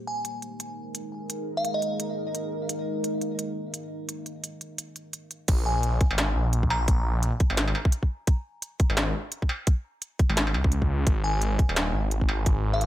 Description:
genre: half-time drum and bass.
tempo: 172 BPM.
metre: 4/4.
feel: swing 58% on 16ths, half-time.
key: Bb minor.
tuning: A4 = 441 Hz.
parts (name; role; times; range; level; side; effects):
deep dark ambient pad; sustained chords; 0.0-5.4 s; Ab3 to Bb4; -32 LUFS; equal; chorus, built-in reverb, sidechain pumping.
glassy synth bell; melody; 0.1-2.1, 5.7-7.0, 11.2-12.9 s; Eb5 to Bb5; -33 LUFS; equal; chorus, vintage 12-bit sampler grit, tape echo.
industrial drum kit; drums; 0.2-12.9 s; crash cymbal, hi-hat, snare drum, struck metal; -28 LUFS; equal; none.
phased detuned saw bass; bass; 5.5-12.9 s; Eb1 to Db2; -25 LUFS; equal; phaser.
electronic kick drum; drums; 5.5-12.5 s; none; -22 LUFS; equal; none.
room: little or no reverb.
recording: none.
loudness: -24 LUFS.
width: side -13 dB against mid.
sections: 0.0-5.5 A section; 5.5-12.9 B section.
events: drop 5.5-12.9.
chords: 0.0 Absus2; 5.5 Bbm; 11.1 Ab5.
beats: 0.25 0.60 0.95 | 1.30 1.65 2.00 2.34 | 2.69 3.04 3.39 3.74 | 4.09 4.44 4.79 5.13 | 5.48 5.83 6.18 6.53 | 6.88 7.23 7.58 7.92 | 8.27 8.62 8.97 9.32 | 9.67 10.02 10.37 10.72 | 11.06 11.41 11.76 12.11 | 12.46 12.81.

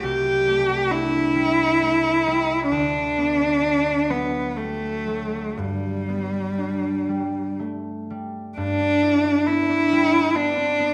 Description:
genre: classical, impressionist duo for cello and harp.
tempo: 59-69 BPM.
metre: 3/4.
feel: rubato.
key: G major.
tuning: A4 = 440 Hz.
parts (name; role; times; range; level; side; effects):
rich cello; melody; 0.0-10.9 s; G3 to G4; -23 LUFS; equal; none.
concert harp; accompaniment; 0.0-10.9 s; C2 to E4; -28 LUFS; equal; none.
room: moderate recital hall reverb, RT60 1.4 s.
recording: none.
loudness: -22 LUFS.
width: mono.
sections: 0.0-8.6 A section; 8.6-10.9 B section.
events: none.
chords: 0.0 C69; 2.7 D6; 5.6 G.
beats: | 0.03 0.91 1.80 | 2.71 3.62 4.58 | 5.58 6.59 7.60 | 8.59 9.48 10.35.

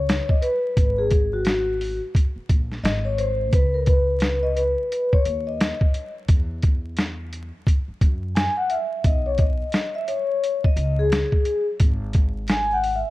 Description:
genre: hip hop, jazz-hop.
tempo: 87 BPM.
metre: 4/4.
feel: swing 62% on 16ths.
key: C# dorian.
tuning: A4 = 439 Hz.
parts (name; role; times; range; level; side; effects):
vibraphone with soft mallets; accompaniment; 0.0-13.1 s; F#4 to G#5; -23 LUFS; left 2 dB; none.
upright bass; bass; 0.0-13.0 s; G#1 to F#2; -27 LUFS; equal; none.
boom bap sampler-style drum kit; drums; 0.1-13.0 s; hi-hat, kick drum, snare drum; -20 LUFS; equal; vintage 12-bit sampler grit.
room: studio ambience.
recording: dark, warm production, vinyl crackle.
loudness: -19 LUFS.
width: side -17 dB against mid.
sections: 0.0-13.1 A section.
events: vibraphone solo 0.0-13.1.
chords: 0.0 Bsus2; 0.8 G#7sus2; 2.8 G#; 3.5 C#sus2; 6.3 Esus2; 9.0 B69; 11.8 G#5.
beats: 0.08 | 0.77 1.46 2.15 2.84 | 3.53 4.22 4.91 5.60 | 6.29 6.98 7.67 8.36 | 9.05 9.74 10.43 11.12 | 11.81 12.50.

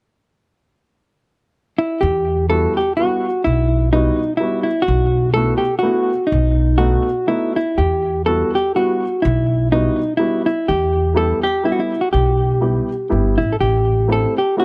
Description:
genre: musette.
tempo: 124 BPM.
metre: 3/4.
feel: swing 54% on 8ths, rubato.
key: E harmonic minor.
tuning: A4 = 439 Hz.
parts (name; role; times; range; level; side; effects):
hollow-body jazz guitar; melody; 1.8-14.6 s; D#4 to A4; -20 LUFS; equal; tape echo.
upright bass; bass; 2.0-14.2 s; G1 to E2; -21 LUFS; equal; none.
warm upright piano; accompaniment; 2.5-14.6 s; G3 to G4; -24 LUFS; equal; none.
room: light reverb.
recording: dry, close 1970s-style studio recording.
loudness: -18 LUFS.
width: mono.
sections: 0.6-2.0 A section; 2.0-14.6 B section.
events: none.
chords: 0.6 N.C.; 2.0 Emadd9; 4.9 B7sus4; 6.3 B7; 7.8 Emadd9; 10.7 Em; 13.6 Am7.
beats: | 0.59 1.07 1.55 | 2.03 2.51 2.99 | 3.46 3.93 4.40 | 4.88 5.36 5.83 | 6.31 6.80 7.29 | 7.79 8.27 8.76 | 9.24 9.72 10.20 | 10.68 11.16 11.64 | 12.13 12.62 13.11 | 13.61 14.10 14.59.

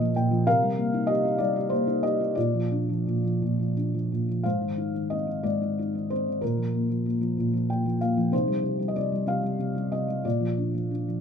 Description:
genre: classical, lyrical solo piano.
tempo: 56-66 BPM (dotted quarters).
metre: 6/8.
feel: rubato.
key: unclear.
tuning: A4 = 440 Hz.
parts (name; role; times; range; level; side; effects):
felt-muted upright piano; solo; 0.0-11.2 s; Ab2 to G5; -24 LUFS; equal; none.
room: light reverb.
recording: none.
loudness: -24 LUFS.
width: side -7 dB against mid.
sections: 0.0-4.4 A section; 4.4-11.2 A section.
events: felt piano fill 0.0-0.5, 7.4-8.3.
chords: 0.5 Cm7; 2.4 Bb; 4.4 Ab; 6.4 Bb5; 8.3 Cm; 10.2 Bb.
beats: | 0.47 1.39 | 2.37 3.41 | 4.45 5.45 | 6.42 7.37 | 8.33 9.27 | 10.24.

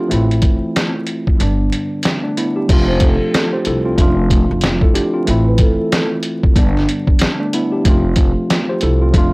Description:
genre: hip hop, boom-bap hip-hop.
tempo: 93 BPM.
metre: 4/4.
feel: swing 60% on 16ths.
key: unclear.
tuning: A4 = 441 Hz.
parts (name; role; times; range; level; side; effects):
mellow tine electric piano; accompaniment; 0.0-9.3 s; D3 to C5; -18 LUFS; equal; medium stereo tremolo, cassette tape, high-pass filter, low-pass filter.
upright bass; bass; 0.1-9.3 s; F1 to C2; -17 LUFS; equal; tube saturation.
trip hop sampler-style drum kit; drums; 0.1-9.3 s; crash cymbal, hi-hat, kick drum, snare drum; -15 LUFS; equal; overdrive.
vibraphone with soft mallets; melody; 2.9-6.1 s; A4 to C5; -22 LUFS; right 1 dB; high-pass filter, low-pass filter, tape echo.
room: little or no reverb.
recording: dry, gritty hardware recording, transformer saturation, vinyl crackle.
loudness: -13 LUFS.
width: side -26 dB against mid.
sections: 0.0-2.7 A section; 2.7-9.3 B section.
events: kick muted 1.4-2.7.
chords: 0.1 Am; 1.4 G; 2.7 F; 5.3 Am; 6.6 G; 7.9 F.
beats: | 0.11 0.76 1.40 2.05 | 2.69 3.34 3.98 4.63 | 5.27 5.92 6.56 7.21 | 7.85 8.50 9.14.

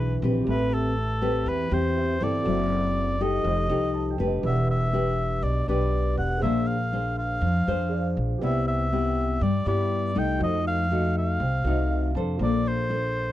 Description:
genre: bossa nova.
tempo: 121 BPM.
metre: 4/4.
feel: straight.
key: unclear.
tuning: A4 = 440 Hz.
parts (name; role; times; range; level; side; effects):
mellow oboe; melody; 0.0-13.3 s; A4 to G5; -29 LUFS; equal; none.
nylon-string guitar; accompaniment; 0.0-13.3 s; B2 to C5; -27 LUFS; left 2 dB; none.
warm grand piano; accompaniment; 0.0-13.3 s; F4 to A5; -37 LUFS; right 8 dB; none.
upright bass; bass; 0.0-13.3 s; E1 to G2; -27 LUFS; equal; none.
room: little or no reverb.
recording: dry, close 1970s-style studio recording.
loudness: -22 LUFS.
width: side -13 dB against mid.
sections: 0.0-13.3 A section.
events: grand piano fill 3.7-4.4, 11.7-12.4.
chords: 0.5 Am9; 2.5 F#m7b5; 3.4 F9; 4.4 Em7; 6.4 Bb9; 8.4 Cmaj7; 10.4 F7b9; 12.4 Bbmaj9.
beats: | 0.47 0.97 1.46 1.96 | 2.45 2.95 3.45 3.94 | 4.44 4.94 5.43 5.93 | 6.43 6.92 7.42 7.92 | 8.42 8.91 9.41 9.91 | 10.41 10.90 11.40 11.90 | 12.40 12.90.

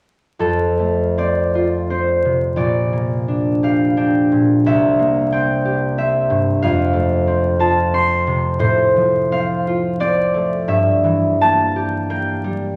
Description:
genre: classical, solo harp piece.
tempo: 74-94 BPM.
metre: 3/4.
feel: rubato.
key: F major.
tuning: A4 = 440 Hz.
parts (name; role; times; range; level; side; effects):
concert harp; solo; 0.4-12.8 s; Bb1 to C6; -17 LUFS; equal; none.
room: wet scoring stage reverb, RT60 1.9 s.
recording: vinyl crackle.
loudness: -17 LUFS.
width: mono.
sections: 0.4-12.8 A section.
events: none.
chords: 0.4 F; 2.6 Gm/Bb; 4.6 C7; 6.6 F; 8.6 F/A; 10.7 Edim/G.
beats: | 0.39 1.17 1.89 | 2.58 3.27 3.95 | 4.64 5.31 5.97 | 6.61 7.27 7.93 | 8.60 9.32 10.00 | 10.68 11.40 12.10.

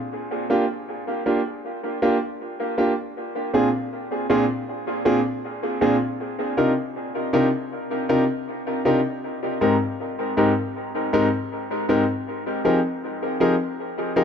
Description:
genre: reggae.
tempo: 79 BPM.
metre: 4/4.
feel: straight.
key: unclear.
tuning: A4 = 441 Hz.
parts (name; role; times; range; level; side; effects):
clear concert grand piano; solo; 0.5-14.2 s; Ab2 to Bb4; -21 LUFS; equal; dub echo.
room: moderate plate reverb, RT60 2.6 s.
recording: none.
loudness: -21 LUFS.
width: side -7 dB against mid.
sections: 0.0-3.2 A section; 3.2-14.2 B section.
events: none.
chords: 0.1 Gm7; 3.2 Bb9; 6.2 Cm11; 9.2 Abmaj9; 12.3 Fm11.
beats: | 0.12 0.88 1.64 2.40 | 3.16 3.92 4.67 5.43 | 6.19 6.95 7.71 8.47 | 9.23 9.99 10.75 11.51 | 12.26 13.02 13.78.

